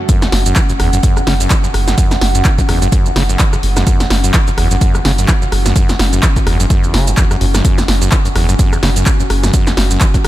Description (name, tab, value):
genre	acid house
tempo	127 BPM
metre	4/4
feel	swing 57% on 16ths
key	unclear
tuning	A4 = 440 Hz
part	warbly tape-like pad	texture	0.0-10.3 s	C#4 to F#5	-22 LUFS	equal	chorus, built-in reverb, sidechain pumping
part	acid bass, saw	riff	0.1-10.3 s	E2 to E3	-18 LUFS	equal	overdrive, sidechain pumping, ping-pong delay
part	electronic kick drum	drums	0.1-10.2 s	none	-12 LUFS	equal	overdrive
part	punchy analog drum machine	drums	0.1-10.3 s	handclaps, hi-hat, rim click, shaker, snare drum	-17 LUFS	equal	overdrive
part	saturated sub bass	bass	0.3-10.3 s	F#1	-15 LUFS	equal	sidechain pumping
room	light reverb, digital ambience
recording	none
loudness	-10 LUFS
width	side -15 dB against mid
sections	0.1-10.3 A section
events	drop 0.1-10.3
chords	0.1 F#5